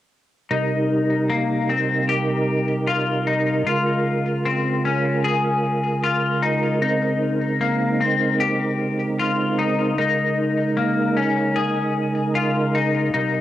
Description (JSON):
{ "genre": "dream pop", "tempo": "76 BPM", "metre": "4/4", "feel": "straight", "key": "unclear", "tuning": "A4 = 440 Hz", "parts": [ { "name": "mellow tonewheel organ", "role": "sustained chords", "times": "0.5-13.4 s", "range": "C3 to Bb4", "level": "-21 LUFS", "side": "right 2 dB", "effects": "chorus vibrato, slow rotary speaker, cassette tape, plate reverb" }, { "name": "semi-hollow electric guitar", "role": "arpeggios", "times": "0.5-13.4 s", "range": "Bb3 to Ab4", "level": "-22 LUFS", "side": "left 4 dB", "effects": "analog chorus, cassette tape, tape echo, plate reverb" } ], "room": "wet small room reverb, RT60 0.5 s", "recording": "home recording on cassette", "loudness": "-18 LUFS", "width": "side -13 dB against mid", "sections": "0.5-13.4 A section", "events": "none", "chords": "0.5 Cm7; 3.7 Db6; 6.8 Bbm11; 10.0 Eb7sus4", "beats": "| 0.51 1.30 2.09 2.88 | 3.67 4.46 5.25 6.03 | 6.82 7.61 8.40 9.19 | 9.98 10.77 11.56 12.35 | 13.14" }